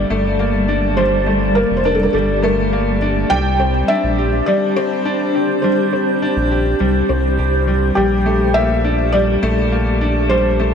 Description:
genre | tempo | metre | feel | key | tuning
piano and strings electronica | 103 BPM | 4/4 | straight | G dorian | A4 = 440 Hz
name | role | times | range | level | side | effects
felt-muted upright piano | melody | 0.0-10.7 s | G4 to G5 | -20 LUFS | equal | ping-pong delay
granular cloud pad | sustained chords | 0.0-10.7 s | G3 to A5 | -20 LUFS | equal | built-in reverb
clear upright piano | riff | 0.0-10.7 s | G3 to G4 | -19 LUFS | left 1 dB | ping-pong delay
round analog bass | bass | 0.0-10.7 s | F1 to C2 | -19 LUFS | equal | none
room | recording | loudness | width
light reverb, small room ambience | none | -14 LUFS | side -7 dB against mid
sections
0.0-10.7 A section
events
none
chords
0.0 Gmadd9; 3.3 Csus2; 8.0 Gmadd9/Bb

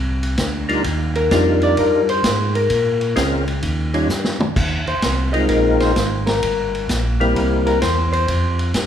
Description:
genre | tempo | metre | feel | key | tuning
soul jazz organ trio | 129 BPM | 4/4 | swing 67% on 8ths | Eb major, Ab major from 4.6 s | A4 = 440 Hz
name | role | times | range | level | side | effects
tonewheel organ | bass | 0.0-8.9 s | G1 to Bb2 | -20 LUFS | equal | overdrive
vintage drum kit | drums | 0.2-8.9 s | crash cymbal, hi-hat, kick drum, ride cymbal, snare drum, toms | -23 LUFS | equal | none
percussive tonewheel organ | melody | 0.7-7.8 s | G3 to Db5 | -20 LUFS | left 1 dB | chorus vibrato, slow rotary speaker
vintage hollow-body jazz guitar | accompaniment | 1.2-8.7 s | Bb4 to Eb5 | -20 LUFS | left 2 dB | none
room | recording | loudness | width
wet recital hall reverb, RT60 1.4 s | recorded in a church or concert hall | -16 LUFS | side -9 dB against mid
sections
0.0-4.6 A section; 4.6-8.9 A section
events
hollow-body jazz guitar solo 0.0-8.9; drum fill 4.1-4.6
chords
0.0 Bb; 0.8 Ebmaj9; 2.7 Bbm7; 3.6 Eb9; 4.6 Ab69; 6.4 Gmadd11; 7.4 C7; 8.3 Fsus2

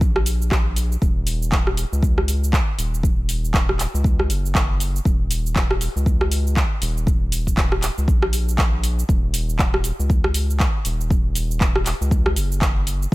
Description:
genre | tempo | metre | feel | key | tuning
afro house | 119 BPM | 4/4 | swing 59% on 16ths | Eb minor | A4 = 445 Hz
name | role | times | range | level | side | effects
round analog bass | bass | 0.0-13.1 s | Eb1 to Db2 | -22 LUFS | equal | sidechain pumping
afro-pop drum kit | drums | 0.0-13.1 s | handclaps, hi-hat, rim click, shaker | -24 LUFS | right 1 dB | none
electronic kick drum | drums | 0.0-13.1 s | none | -20 LUFS | equal | none
room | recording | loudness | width
little or no reverb | none | -18 LUFS | side -19 dB against mid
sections
0.0-13.1 A section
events
none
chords
none

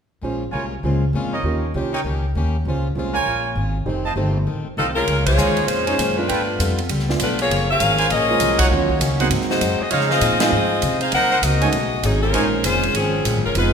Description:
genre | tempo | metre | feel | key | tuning
jazz, big band swing | 198 BPM | 4/4 | swing 62% on 8ths | Bb dorian, Bb minor from 5.1 s | A4 = 440 Hz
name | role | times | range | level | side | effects
picked plugged-in swing-style acoustic guitar | accompaniment | 0.2-13.7 s | F2 to A4 | -29 LUFS | left 4 dB | none
warm concert grand piano | accompaniment | 0.2-13.7 s | F3 to Db5 | -26 LUFS | right 6 dB | none
upright bass | bass | 0.2-13.7 s | F1 to Db3 | -22 LUFS | equal | none
bright trumpet section | stabs | 0.5-12.5 s | Db4 to C6 | -25 LUFS | right 3 dB | none
bright saxophone section | melody | 4.8-13.7 s | F3 to Gb5 | -19 LUFS | left 1 dB | none
swinging big-band drum kit | drums | 5.1-13.6 s | hi-hat, kick drum, ride cymbal, snare drum | -25 LUFS | right 1 dB | none
room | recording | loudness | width
moderate scoring stage reverb, RT60 1.4 s | minimal, uncompressed stereo recording | -17 LUFS | side -6 dB against mid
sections
0.2-5.1 A section; 5.1-13.7 B section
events
band accent 5.2, 8.6, 10.4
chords
0.2 Bbm7; 1.4 Eb7; 2.7 Bbm7; 3.9 F7; 5.1 Bbm11; 6.3 G9; 7.5 Gbmaj9#11; 8.7 Ebm7; 9.3 Ab7; 9.9 Dbmaj9; 11.1 Cm7b5; 11.7 B13; 12.3 Bbm11

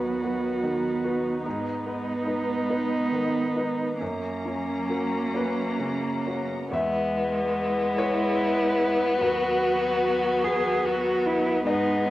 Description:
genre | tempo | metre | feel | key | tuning
neoclassical piano and strings | 42-50 BPM (dotted quarters) | 6/8 | rubato | unclear | A4 = 438 Hz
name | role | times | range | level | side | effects
rich cello | second line | 0.0-12.1 s | A#3 to G#4 | -28 LUFS | right 2 dB | cassette tape, tape echo
bright upright piano | accompaniment | 0.0-12.1 s | D#2 to E5 | -31 LUFS | left 1 dB | cassette tape
rich viola | accompaniment | 0.0-12.1 s | F#3 to F#4 | -31 LUFS | right 1 dB | cassette tape
warm studio string section | sustained chords | 0.0-12.1 s | F#3 to A#5 | -35 LUFS | left 2 dB | cassette tape
rich violin | melody | 6.7-12.1 s | B3 | -24 LUFS | left 2 dB | cassette tape
room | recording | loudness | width
light reverb, studio reverb | home recording on cassette | -23 LUFS | side -15 dB against mid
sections
0.0-6.7 A section; 6.7-12.1 B section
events
none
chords
0.0 B/D#; 1.5 G#m; 4.0 F#; 6.7 E; 9.2 B/D#

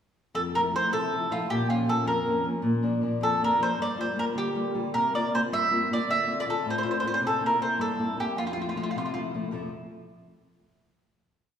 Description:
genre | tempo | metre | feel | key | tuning
italian folk, Italian serenade | 105 BPM (dotted quarters) | 6/8 | straight | F major | A4 = 440 Hz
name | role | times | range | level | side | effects
mandolin | melody | 0.3-9.2 s | F4 to E5 | -26 LUFS | right 1 dB | none
flamenco guitar | accompaniment | 0.3-9.7 s | F2 to E5 | -29 LUFS | left 2 dB | none
room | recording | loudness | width
wet recital hall reverb, RT60 1.6 s | recorded in a church or concert hall | -24 LUFS | side -8 dB against mid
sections
0.4-9.5 A section; 9.5-10.6 final chord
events
none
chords
0.4 Fmaj7; 1.5 Bbm; 2.6 Bb; 3.8 Gm7; 4.9 C7sus4; 6.1 Dm7; 7.2 C7; 8.4 Fmaj7

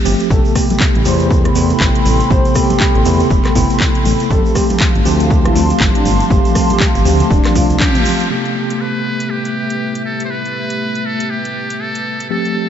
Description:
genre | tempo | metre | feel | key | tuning
deep house | 120 BPM | 4/4 | swing 60% on 16ths | A minor | A4 = 443 Hz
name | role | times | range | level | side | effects
bell-like tine electric piano | stabs | 0.0-12.7 s | C3 to G4 | -18 LUFS | equal | fast stereo tremolo, sidechain pumping, low-pass filter, tape echo
smooth synth bass | bass | 0.1-7.8 s | D1 to E2 | -17 LUFS | equal | sidechain pumping
house drum kit | drums | 0.1-12.5 s | handclaps, hi-hat, rim click | -21 LUFS | equal | overdrive
egg shaker | percussion | 0.1-8.3 s | none | -31 LUFS | right 4 dB | none
breathy flute-like synth lead | melody | 0.3-8.0 s | D4 to C5 | -23 LUFS | left 1 dB | chorus, cassette tape, tape echo
dark analog pad | sustained chords | 1.0-12.7 s | G3 to C6 | -22 LUFS | equal | chorus, sidechain pumping
electronic kick drum | drums | 0.3-7.9 s | none | -15 LUFS | equal | overdrive
congas | percussion | 0.7-8.2 s | none | -26 LUFS | right 2 dB | none
trumpet with metal mute | melody | 7.8-12.7 s | G4 to C5 | -21 LUFS | equal | tape echo
room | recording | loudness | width
light reverb, digital ambience | nothing above 7.8 kHz | -12 LUFS | side -9 dB against mid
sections
0.0-8.3 A section; 8.3-12.7 B section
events
band accent 7.8; filter sweep on analog synth pad 8.3-12.7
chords
0.3 Am9; 4.3 G9sus4; 8.3 Am9

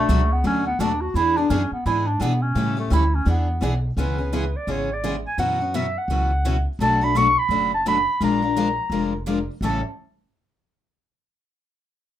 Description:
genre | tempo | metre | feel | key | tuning
acoustic string swing (jazz manouche) | 170 BPM | 4/4 | swing 61% on 8ths | unclear | A4 = 441 Hz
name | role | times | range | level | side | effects
warm clarinet | melody | 0.0-9.8 s | A3 to C#6 | -22 LUFS | right 1 dB | none
picked steel-string acoustic guitar | accompaniment | 0.0-9.8 s | A2 to Bb4 | -25 LUFS | left 5 dB | none
upright bass | bass | 0.0-9.8 s | F1 to B2 | -24 LUFS | equal | none
picked steel-string acoustic guitar | accompaniment | 0.1-9.8 s | A2 to B4 | -32 LUFS | right 6 dB | none
room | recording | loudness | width
moderate small room reverb, RT60 0.5 s | rough home demo mix | -19 LUFS | side -11 dB against mid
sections
0.0-4.0 A section; 4.0-9.6 B section; 9.6-11.0 C section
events
none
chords
0.0 Bm7; 1.2 E7; 2.6 A7; 3.3 E7; 4.0 C#m7; 5.4 F#7sus4; 6.8 Bm7; 8.2 Bb7; 9.6 A7

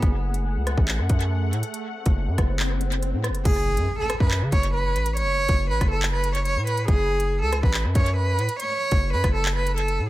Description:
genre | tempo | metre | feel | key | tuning
hip hop, drill | 140 BPM | 4/4 | half-time | F# minor | A4 = 439 Hz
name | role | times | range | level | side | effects
sweeping resonant pad | sustained chords | 0.0-3.4 s | A3 to F#5 | -34 LUFS | equal | chorus
distorted 808-style bass | bass | 0.0-10.1 s | F#1 to C#3 | -24 LUFS | equal | distortion
drill drum kit | drums | 0.0-10.0 s | crash cymbal, handclaps, hi-hat, kick drum, rim click | -24 LUFS | equal | tape echo
swell and impact | sound effects | 2.0-5.2 s | none | -34 LUFS | left 2 dB | none
clear cello | melody | 3.5-10.1 s | G#4 to C#5 | -25 LUFS | right 2 dB | tape echo
room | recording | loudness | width
digital ambience | echo-heavy mix | -20 LUFS | side -16 dB against mid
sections
0.0-3.5 A section; 3.5-10.1 B section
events
break 0.0-3.5; swell 2.0-3.5; impact 3.5-5.2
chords
0.0 F#madd9; 3.5 F#m

